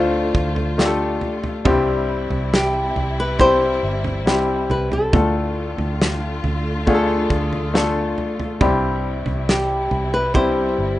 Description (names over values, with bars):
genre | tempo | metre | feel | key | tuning
pop ballad | 69 BPM | 4/4 | straight | C major | A4 = 440 Hz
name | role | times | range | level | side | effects
flamenco guitar | melody | 0.0-11.0 s | F4 to C5 | -21 LUFS | left 1 dB | none
bright upright piano | accompaniment | 0.0-11.0 s | G2 to C5 | -21 LUFS | left 2 dB | none
rich studio string section | sustained chords | 0.0-11.0 s | C3 to F4 | -29 LUFS | left 1 dB | none
vintage muted fingered electric bass | bass | 0.0-11.0 s | G1 to D2 | -25 LUFS | right 1 dB | none
loose indie drum kit | drums | 0.3-10.6 s | kick drum, snare drum, toms | -22 LUFS | right 1 dB | none
room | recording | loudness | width
light reverb | rough home demo mix, nothing above 10.3 kHz | -17 LUFS | side -15 dB against mid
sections
0.0-11.0 A section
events
none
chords
0.0 Dm; 1.7 C; 5.1 Dm; 8.6 C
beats
0.78 | 1.65 2.52 3.39 4.26 | 5.13 6.00 6.87 7.74 | 8.61 9.48 10.35